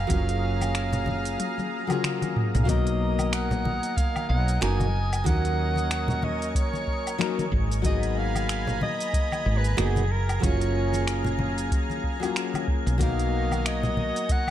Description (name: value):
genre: sunset chillout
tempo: 93 BPM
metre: 4/4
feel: swing 57% on 16ths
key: F# major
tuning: A4 = 440 Hz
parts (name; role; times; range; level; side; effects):
- breathy soprano saxophone; melody; 0.0-14.5 s; G#4 to G#5; -32 LUFS; right 1 dB; tape echo
- lush unison pad; sustained chords; 0.0-14.5 s; F#4 to C#6; -34 LUFS; equal; chorus
- woody fretless electric bass; bass; 0.0-14.1 s; F#1 to D#2; -26 LUFS; equal; wide subtle chorus
- wind-like tuned noise texture; texture; 0.0-14.5 s; F#4 to G#6; -41 LUFS; equal; built-in reverb
- nylon-string guitar; accompaniment; 0.1-14.5 s; F#3 to A#4; -30 LUFS; moving between left 8 dB and right 6 dB; auto-pan, tape echo
- electronic kick drum; drums; 0.1-14.4 s; none; -26 LUFS; equal; studio reverb
- smooth R&B drum kit; drums; 0.1-14.5 s; finger snaps, hi-hat, shaker, toms, woodblock; -32 LUFS; equal; studio reverb
- congas; percussion; 0.1-14.5 s; none; -32 LUFS; left 2 dB; none
room: light reverb, digital ambience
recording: dark, warm production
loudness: -23 LUFS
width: side -11 dB against mid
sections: 0.0-14.5 A section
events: kick drops out 1.4-2.7; drum fill 1.4-2.7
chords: 0.0 F#maj9; 2.7 Bmaj7; 5.3 D#m7; 7.8 G#m9; 10.1 F#maj9; 13.0 Bmaj7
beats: | 0.10 0.75 1.39 2.04 | 2.68 3.33 3.97 4.62 | 5.26 5.91 6.55 7.20 | 7.84 8.49 9.13 9.78 | 10.43 11.07 11.72 12.36 | 13.01 13.65 14.30